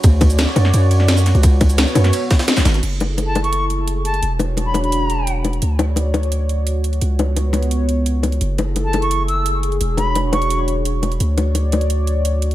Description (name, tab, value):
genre	liquid drum and bass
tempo	172 BPM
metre	4/4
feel	straight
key	F# minor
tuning	A4 = 440 Hz
part	warm analog pad	sustained chords	0.0-12.5 s	B3 to D5	-24 LUFS	equal	chorus, sidechain pumping
part	long sustained 808-style bass	bass	0.0-12.5 s	E1 to F#2	-17 LUFS	equal	none
part	breakbeat sampler-style drum kit	drums	0.0-2.8 s	ride cymbal, snare drum	-26 LUFS	right 1 dB	high-pass filter on cymbals, studio reverb, high-pass filter on snare, high-pass filter on hats
part	drum and bass drum kit	drums	0.0-12.5 s	cabasa, crash cymbal, hi-hat, snare drum	-23 LUFS	equal	overdrive, studio reverb
part	electronic kick drum	drums	0.0-2.6 s	none	-14 LUFS	equal	overdrive, studio reverb
part	bongos	percussion	0.2-11.8 s	none	-23 LUFS	left 4 dB	none
part	bright reedy jazz flute	melody	3.3-5.3, 8.8-10.6 s	A5 to E6	-23 LUFS	equal	digital delay
room	light reverb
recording	none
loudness	-15 LUFS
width	side -14 dB against mid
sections	0.0-2.8 A section; 2.8-12.5 B section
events	drop 0.0-2.8; band accent 2.5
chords	0.0 Dmaj7; 1.4 C#7sus4; 2.8 F#m9; 4.2 E13; 5.6 Dmaj7; 7.0 C#7sus4; 8.4 F#m9; 9.8 E13; 11.2 Dmaj7